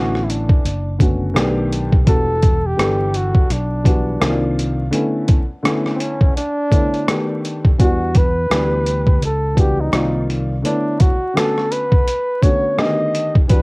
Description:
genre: hip hop, jazz-hop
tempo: 84 BPM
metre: 4/4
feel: swing 60% on 16ths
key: unclear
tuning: A4 = 440 Hz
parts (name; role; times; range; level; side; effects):
- mellow flugelhorn; melody; 0.0-13.6 s; C4 to D#5; -20 LUFS; equal; none
- dark upright piano; accompaniment; 0.0-13.6 s; D3 to D5; -21 LUFS; left 1 dB; cassette tape
- fingered electric bass; bass; 0.0-13.6 s; E1 to E2; -21 LUFS; equal; none
- boom bap sampler-style drum kit; drums; 0.1-13.6 s; hi-hat, kick drum, rim click; -15 LUFS; equal; none
room: little or no reverb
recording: home recording on cassette, vinyl crackle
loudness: -14 LUFS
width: side -28 dB against mid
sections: 0.0-13.6 A section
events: none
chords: 0.0 Bm11; 1.4 B7alt; 2.1 Em9; 4.2 Cm11; 4.9 Bm11; 7.1 B7alt; 7.8 Em9; 9.9 Cm11; 10.6 Bm11; 12.8 B7alt

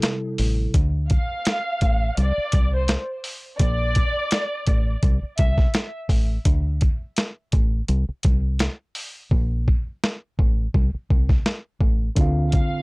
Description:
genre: hip hop, boom-bap hip-hop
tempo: 84 BPM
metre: 4/4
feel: swing 56% on 16ths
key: D minor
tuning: A4 = 440 Hz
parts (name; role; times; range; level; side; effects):
- mellow tine electric piano; accompaniment; 0.0-0.8, 12.2-12.8 s; C3 to F5; -25 LUFS; right 1 dB; medium stereo tremolo, high-pass filter, low-pass filter
- dusty soul sampler-style drum kit; drums; 0.0-12.7 s; hi-hat, kick drum, snare drum; -20 LUFS; equal; none
- deep dub fingered electric bass; bass; 0.4-12.6 s; A1 to D2; -22 LUFS; equal; none
- warm studio violin section; melody; 1.1-5.6, 12.5-12.8 s; C5 to F5; -27 LUFS; equal; high-pass filter, low-pass filter, analog delay
room: little or no reverb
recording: dry, gritty hardware recording, transformer saturation, cassette tape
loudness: -19 LUFS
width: side -26 dB against mid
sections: 0.7-12.8 A section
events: break 0.0-0.7; hi-hats muted 9.3-12.2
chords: 0.0 Am7/C; 0.7 Dm; 2.2 Csus2; 3.6 Bbmaj7; 5.0 Am/C; 6.5 D5; 7.9 N.C.; 10.7 Am/C; 12.2 Dm7

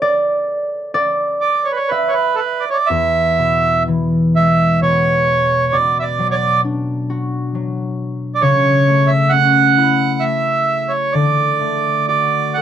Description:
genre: celtic folk, Celtic slow air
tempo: 60-68 BPM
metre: 3/4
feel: rubato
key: E mixolydian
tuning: A4 = 440 Hz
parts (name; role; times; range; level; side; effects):
- concert harp; accompaniment; 0.0-12.6 s; E2 to E5; -17 LUFS; left 2 dB; none
- accordion; melody; 1.4-12.6 s; A4 to F#5; -14 LUFS; right 4 dB; none
room: little or no reverb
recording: dry, close 1970s-style studio recording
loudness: -14 LUFS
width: side -9 dB against mid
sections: 0.0-2.9 A section; 2.9-12.6 B section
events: harp solo 0.0-2.9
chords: 0.0 N.C.; 2.9 E; 5.8 Bm; 8.4 A/C#; 11.1 D

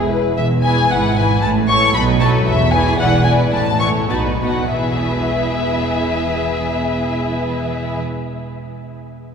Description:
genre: quick classical-period movement for symphony orchestra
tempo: 93-116 BPM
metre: 2/4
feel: rubato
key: E major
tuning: A4 = 439 Hz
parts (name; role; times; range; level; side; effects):
- warm studio violin section; melody; 0.0-8.0 s; B4 to C#6; -19 LUFS; left 3 dB; none
- warm studio violin section; second line; 0.0-8.0 s; F#4 to D5; -24 LUFS; left 3 dB; none
- rich studio viola section; accompaniment; 0.0-8.0 s; E3 to E4; -24 LUFS; right 1 dB; none
- dark studio double bass section; bass; 0.0-8.0 s; E1 to B1; -21 LUFS; right 1 dB; none
- warm studio cello section; bass; 0.0-8.0 s; E2 to B2; -22 LUFS; right 3 dB; none
room: wet cathedral reverb, RT60 5.2 s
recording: recorded in a church or concert hall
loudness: -14 LUFS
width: side -6 dB against mid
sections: 0.4-4.7 A section; 4.7-7.2 B section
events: slowing down 1.9-4.7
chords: 0.4 E; 0.9 E/G#; 1.4 A; 1.9 B7; 2.5 E; 3.5 A; 4.1 B; 4.7 E

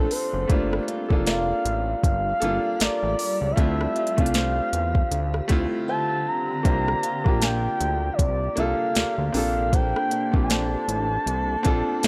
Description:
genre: contemporary R&B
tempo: 78 BPM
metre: 4/4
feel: swing 58% on 16ths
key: D minor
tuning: A4 = 435 Hz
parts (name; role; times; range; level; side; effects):
- gliding portamento lead; melody; 0.0-12.1 s; A4 to Bb5; -29 LUFS; equal; chorus
- clear baby grand piano; accompaniment; 0.0-12.1 s; A3 to A4; -31 LUFS; equal; none
- granular cloud pad; sustained chords; 0.0-12.1 s; C3 to D5; -37 LUFS; equal; built-in reverb
- fingerpicked swing-style acoustic guitar; arpeggios; 0.0-12.1 s; G3 to E5; -36 LUFS; equal; tape echo
- fat analog bass; bass; 0.0-12.1 s; F1 to E2; -30 LUFS; equal; none
- downlifter; sound effects; 0.2-0.5 s; none; barely audible; none; none
- smooth R&B drum kit; drums; 0.1-12.1 s; hi-hat, kick drum, rim click, snare drum; -25 LUFS; equal; overdrive
room: little or no reverb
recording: dry, gritty hardware recording, transformer saturation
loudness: -24 LUFS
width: mono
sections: 0.0-12.1 A section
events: silent gap 5.9-6.6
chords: 0.5 Gm7; 3.6 Dm9; 6.6 C9sus4; 9.3 Bbmaj9

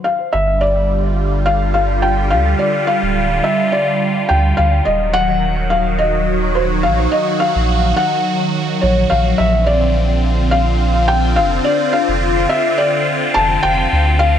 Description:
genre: IDM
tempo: 106 BPM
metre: 4/4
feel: straight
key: unclear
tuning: A4 = 436 Hz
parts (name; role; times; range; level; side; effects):
- felt-muted upright piano; melody; 0.0-14.4 s; C5 to A5; -17 LUFS; left 1 dB; analog delay
- phased analog pad; sustained chords; 0.3-14.4 s; D3 to A4; -18 LUFS; equal; phaser, chorus
- warm sub bass; bass; 0.3-14.4 s; D1 to D2; -17 LUFS; equal; none
room: light reverb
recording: echo-heavy mix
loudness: -13 LUFS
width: side -9 dB against mid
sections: 0.3-14.4 A section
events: stop 0.0-0.3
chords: 0.3 G5; 4.9 Ebm; 9.4 Bbadd9

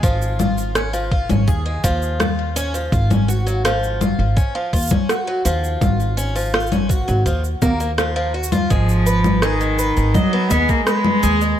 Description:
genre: folktronica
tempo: 83 BPM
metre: 4/4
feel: straight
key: unclear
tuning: A4 = 440 Hz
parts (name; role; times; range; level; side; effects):
- picked twelve-string acoustic guitar; arpeggios; 0.0-11.6 s; E#3 to D#5; -22 LUFS; equal; vintage 12-bit sampler grit, ping-pong delay
- upright bass; bass; 0.0-11.5 s; G#1 to D#2; -20 LUFS; equal; none
- electronic kick drum; drums; 0.0-10.8 s; none; -19 LUFS; equal; none
- electronic shaker, congas and rim click; drums; 0.0-11.6 s; none; -21 LUFS; left 2 dB; none
- warm cello; melody; 8.7-11.6 s; D#3 to B3; -18 LUFS; equal; none
room: studio reverb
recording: none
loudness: -16 LUFS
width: side -10 dB against mid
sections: 0.0-11.6 A section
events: none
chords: 0.0 C#add9/G#; 2.9 F#maj7(no3)/G#; 8.7 G#m

